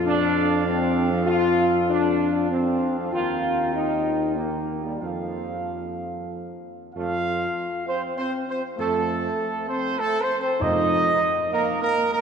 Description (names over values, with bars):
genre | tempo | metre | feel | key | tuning
classical | 98 BPM | 3/4 | straight | F major | A4 = 440 Hz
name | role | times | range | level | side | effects
dark trumpet section | melody | 0.0-12.2 s | A4 to G5 | -26 LUFS | right 2 dB | none
clear trombone section | sustained chords | 0.0-10.8 s | F3 to F4 | -31 LUFS | right 4 dB | none
mellow tuba | bass | 0.0-11.1 s | Eb2 to F2 | -29 LUFS | right 3 dB | none
dark French horn section | sustained chords | 0.1-12.2 s | F3 to F4 | -25 LUFS | left 3 dB | none
timpani | percussion | 10.6-11.5 s | F2 | -33 LUFS | right 1 dB | none
room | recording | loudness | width
wet cathedral reverb, RT60 4.5 s | none | -21 LUFS | side -6 dB against mid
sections
0.0-7.0 A section; 7.0-12.2 B section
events
none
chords
0.0 F; 3.1 Eb; 5.0 F; 10.6 Eb/F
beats
0.06 0.66 | 1.28 1.90 2.50 | 3.13 3.74 4.37 | 5.01 5.67 6.31 | 6.96 7.57 8.18 | 8.79 9.40 10.00 | 10.61 11.22 11.83